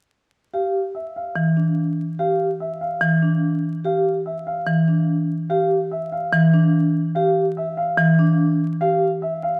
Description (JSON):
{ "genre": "classical, minimalist pattern music", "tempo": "145 BPM", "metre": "4/4", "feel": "straight", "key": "unclear", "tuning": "A4 = 436 Hz", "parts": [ { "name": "warm grand piano", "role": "melody", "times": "0.5-9.6 s", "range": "E5 to F5", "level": "-28 LUFS", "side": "equal", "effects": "none" }, { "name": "vibraphone with medium mallets", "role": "arpeggios", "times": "0.5-9.1 s", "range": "D4 to G4", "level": "-26 LUFS", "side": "equal", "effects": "none" }, { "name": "marimba with hard mallets", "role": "accompaniment", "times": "1.4-8.2 s", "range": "E3", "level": "-22 LUFS", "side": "equal", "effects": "none" } ], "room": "light reverb", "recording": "dark, warm production, vinyl crackle", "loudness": "-20 LUFS", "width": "mono", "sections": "0.1-9.6 A section", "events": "none", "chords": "0.1 Fsus2", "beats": "| 0.12 0.54 0.95 1.36 | 1.78 2.19 2.60 3.02 | 3.43 3.85 4.26 4.67 | 5.09 5.50 5.92 6.33 | 6.74 7.16 7.57 7.98 | 8.40 8.81 9.22" }